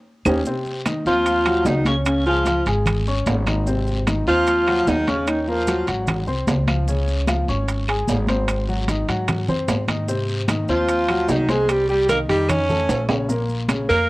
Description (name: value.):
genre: Afro-Cuban jazz.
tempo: 150 BPM.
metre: 4/4.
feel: straight.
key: Ab mixolydian.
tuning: A4 = 440 Hz.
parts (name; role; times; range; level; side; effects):
warm grand piano; accompaniment; 0.3-14.1 s; Bb2 to Db6; -25 LUFS; left 1 dB; cassette tape.
upright bass; bass; 0.3-14.1 s; Ab1 to Ab2; -24 LUFS; equal; none.
claves; percussion; 0.3-13.9 s; none; -31 LUFS; right 4 dB; none.
congas; percussion; 0.3-14.1 s; none; -28 LUFS; left 1 dB; none.
guiro; percussion; 0.3-14.1 s; none; -35 LUFS; left 3 dB; none.
maracas; percussion; 0.3-14.1 s; none; -38 LUFS; right 3 dB; none.
timbales; percussion; 0.3-13.9 s; none; -26 LUFS; right 3 dB; none.
mellow alto saxophone; melody; 1.1-5.9, 10.7-14.1 s; Db4 to C#5; -19 LUFS; equal; cassette tape.
bright baritone saxophone; second line; 1.1-5.9, 10.7-14.1 s; Db3 to C#4; -27 LUFS; right 2 dB; cassette tape.
room: light reverb, small room ambience.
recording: home recording on cassette.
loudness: -18 LUFS.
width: side -20 dB against mid.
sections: 0.5-14.1 A section.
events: band accent 0.0-0.5; drum fill 0.1-0.5, 12.9-13.3.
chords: 0.5 Ebm13; 2.1 Dbadd9; 3.7 Ab6; 5.3 Ebm7; 6.1 Ab6; 6.9 Db; 8.5 Ab6; 11.7 Cm; 12.5 Faug7; 13.3 Bbm.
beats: 0.06 | 0.46 0.86 1.26 1.67 | 2.07 2.47 2.87 3.27 | 3.67 4.07 4.47 4.87 | 5.28 5.68 6.08 6.48 | 6.88 7.28 7.68 8.08 | 8.48 8.88 9.29 9.69 | 10.09 10.49 10.89 11.29 | 11.69 12.09 12.49 12.89 | 13.29 13.69.